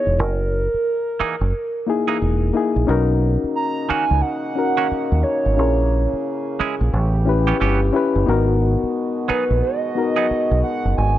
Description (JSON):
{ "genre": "R&B", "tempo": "89 BPM", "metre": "4/4", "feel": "swing 61% on 16ths", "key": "G# minor", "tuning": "A4 = 440 Hz", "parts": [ { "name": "hollow clarinet-like synth lead", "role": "melody", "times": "0.0-11.2 s", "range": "A#4 to A#5", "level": "-23 LUFS", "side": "right 3 dB", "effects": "chorus, phaser" }, { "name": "mellow reed electric piano", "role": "accompaniment", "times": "0.0-11.2 s", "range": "A#3 to B4", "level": "-21 LUFS", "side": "left 5 dB", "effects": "none" }, { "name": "deep dub fingered electric bass", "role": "bass", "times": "0.1-11.2 s", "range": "E1 to D#2", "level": "-19 LUFS", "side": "right 1 dB", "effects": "none" }, { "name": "semi-hollow electric guitar", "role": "second line", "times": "1.2-10.3 s", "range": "D#3 to G#4", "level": "-25 LUFS", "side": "right 8 dB", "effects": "none" }, { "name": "warm French horn section", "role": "sustained chords", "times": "2.9-11.2 s", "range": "B2 to G#4", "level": "-30 LUFS", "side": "right 4 dB", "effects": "none" } ], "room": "light reverb, digital ambience", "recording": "dark, warm production", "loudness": "-17 LUFS", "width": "side -13 dB against mid", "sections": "0.0-11.2 A section", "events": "none", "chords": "0.2 F#13; 2.9 Bmaj9; 5.6 A#m7b5; 6.9 A9; 8.3 G#m7" }